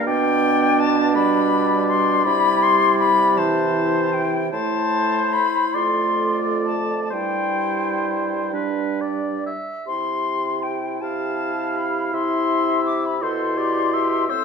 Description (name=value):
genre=classical, slow romantic movement for wind quintet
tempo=42-57 BPM (dotted quarters)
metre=6/8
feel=rubato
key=C major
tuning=A4 = 440 Hz
part: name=silver concert flute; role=melody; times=0.0-14.4 s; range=G5 to E6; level=-21 LUFS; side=left 6 dB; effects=none
part: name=warm oboe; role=second line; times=0.0-14.4 s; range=B4 to F5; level=-26 LUFS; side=left 1 dB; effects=none
part: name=mellow French horn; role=accompaniment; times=0.0-14.4 s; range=E3 to G4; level=-28 LUFS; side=equal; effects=none
part: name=mellow bassoon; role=bass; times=0.0-14.4 s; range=F2 to C3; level=-26 LUFS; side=right 3 dB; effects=none
part: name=warm clarinet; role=accompaniment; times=0.1-14.4 s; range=D4 to A4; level=-25 LUFS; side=right 6 dB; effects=none
room=wet scoring stage reverb, RT60 1.6 s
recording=minimal, uncompressed stereo recording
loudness=-18 LUFS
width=side -5 dB against mid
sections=0.0-9.9 A section; 9.9-14.4 B section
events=none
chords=0.1 G/B; 2.2 C; 4.5 Am; 5.7 Dm7/F; 7.1 C/G; 8.5 G; 9.9 C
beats=| 0.06 1.15 | 2.25 3.37 | 4.52 5.74 | 7.12 8.52 | 9.86 11.01 | 12.12 13.21 | 14.29